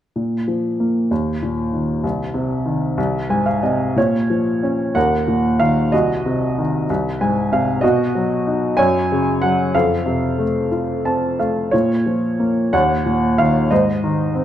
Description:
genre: classical, lyrical solo piano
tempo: 62 BPM (dotted quarters)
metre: 6/8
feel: uneven beats, rubato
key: Bb minor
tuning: A4 = 435 Hz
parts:
  - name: warm upright piano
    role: solo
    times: 0.2-14.4 s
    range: C2 to A5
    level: -16 LUFS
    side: equal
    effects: none
room: wet recital hall reverb, RT60 1.7 s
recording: dark, warm production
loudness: -16 LUFS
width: side -11 dB against mid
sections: 0.2-4.0 A section; 4.0-14.4 B section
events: upright piano fill 3.0-4.0, 6.9-7.8, 10.7-11.7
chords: 0.2 Bb5; 1.1 Eb5; 2.0 Cm; 3.0 Ab/C; 4.0 Bbm; 5.0 Ebm; 5.9 Cdim; 6.9 Ab/C; 7.8 B; 8.8 Gbsus2; 9.7 F; 11.7 Bbm; 12.7 Ebm7; 13.7 Ab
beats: | 0.15 1.11 | 2.04 2.98 | 3.97 4.96 | 5.93 6.89 | 7.83 8.78 | 9.74 10.72 | 11.73 12.73 | 13.71

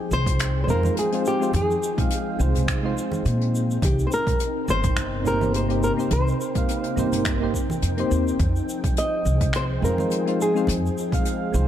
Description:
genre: sunset chillout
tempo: 105 BPM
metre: 4/4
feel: swing 55% on 16ths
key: F minor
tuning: A4 = 441 Hz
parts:
  - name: flamenco guitar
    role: melody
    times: 0.0-11.7 s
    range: G4 to Eb5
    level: -26 LUFS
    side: equal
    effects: vintage 12-bit sampler grit, ping-pong delay
  - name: soft string machine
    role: sustained chords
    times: 0.0-11.7 s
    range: C3 to G5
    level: -29 LUFS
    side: left 1 dB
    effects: ensemble chorus, vintage 12-bit sampler grit
  - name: upright bass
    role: bass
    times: 0.1-11.7 s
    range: G1 to Bb2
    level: -24 LUFS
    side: equal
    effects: none
  - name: soft brush drum kit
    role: drums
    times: 0.1-11.7 s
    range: finger snaps, hi-hat, shaker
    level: -32 LUFS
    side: left 2 dB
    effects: none
  - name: congas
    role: percussion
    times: 0.1-11.7 s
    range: none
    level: -32 LUFS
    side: right 2 dB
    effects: none
  - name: electronic kick drum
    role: drums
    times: 0.3-11.2 s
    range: none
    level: -25 LUFS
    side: equal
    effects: none
  - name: soft electric-piano-like synth keys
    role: accompaniment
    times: 0.7-11.7 s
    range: Ab3 to F5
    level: -27 LUFS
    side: moving between left 5 dB and right 7 dB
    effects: chorus, auto-pan, tape echo
room: moderate concert hall reverb, RT60 2.0 s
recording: dark, warm production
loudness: -20 LUFS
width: side -10 dB against mid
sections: 0.0-11.7 A section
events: none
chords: 0.0 Fm7; 3.8 Cm7; 8.4 Fm7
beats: 0.40 0.97 | 1.54 2.11 2.68 3.25 | 3.83 4.40 4.97 5.54 | 6.11 6.68 7.25 7.83 | 8.40 8.97 9.54 10.11 | 10.68 11.25

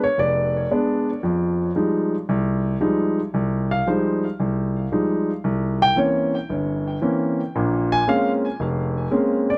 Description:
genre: solo jazz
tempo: 114 BPM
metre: 4/4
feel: swing 69% on 8ths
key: F minor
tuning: A4 = 440 Hz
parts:
  - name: warm concert grand piano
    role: solo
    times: 0.0-9.6 s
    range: F1 to Ab5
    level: -22 LUFS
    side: equal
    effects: tape echo
room: moderate small room reverb, RT60 0.5 s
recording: dry, close 1970s-style studio recording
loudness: -22 LUFS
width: mono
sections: 0.0-9.6 A section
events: grand piano solo 0.0-9.6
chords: 0.0 Bdim7; 1.2 Fm9; 5.4 C7b9; 7.5 Bbm9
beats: 0.18 0.71 | 1.23 1.76 2.29 2.81 | 3.34 3.86 4.39 4.92 | 5.44 5.97 6.49 7.02 | 7.54 8.07 8.60 9.12

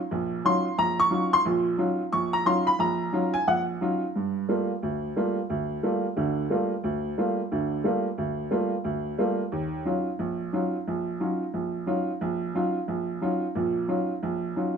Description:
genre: jazz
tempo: 178 BPM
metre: 4/4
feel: swing 62% on 8ths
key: unclear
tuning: A4 = 440 Hz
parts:
  - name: warm upright piano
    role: solo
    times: 0.1-14.8 s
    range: Bb1 to Db6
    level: -24 LUFS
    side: right 1 dB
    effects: none
room: moderate large studio reverb, RT60 1.2 s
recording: minimal, uncompressed stereo recording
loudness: -24 LUFS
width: side -6 dB against mid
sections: 0.0-4.1 A section; 4.1-14.8 B section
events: none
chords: 0.0 Ebm9; 4.1 Gm9; 9.5 Ebm9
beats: | 0.10 0.44 0.78 1.11 | 1.45 1.78 2.12 2.46 | 2.79 3.13 3.46 3.80 | 4.13 4.47 4.81 5.14 | 5.48 5.82 6.15 6.49 | 6.83 7.16 7.50 7.83 | 8.17 8.51 8.84 9.18 | 9.52 9.85 10.19 10.53 | 10.86 11.20 11.53 11.87 | 12.21 12.54 12.88 13.22 | 13.55 13.89 14.23 14.56

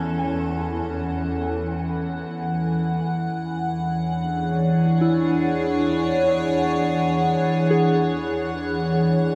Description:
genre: ambient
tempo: free time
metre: none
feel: none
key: E mixolydian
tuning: A4 = 440 Hz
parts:
  - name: evolving wavetable pad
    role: sustained chords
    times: 0.0-9.3 s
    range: E3 to F#5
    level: -23 LUFS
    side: equal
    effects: chorus, built-in reverb, phaser
  - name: soft synth bell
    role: arpeggios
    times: 0.0-9.3 s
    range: E4 to G#5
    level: -30 LUFS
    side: equal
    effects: chorus, diffuse ambient delay
  - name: dark symphonic cello section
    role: bass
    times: 0.0-9.3 s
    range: E2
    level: -35 LUFS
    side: equal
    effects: none
room: wet huge ambient reverb, RT60 7.0 s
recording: in a vast, echoing space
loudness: -23 LUFS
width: mono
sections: 0.0-9.3 A section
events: fade-out on cello section 0.0-9.3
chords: 0.0 F#m9/E; 3.4 E13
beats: free time

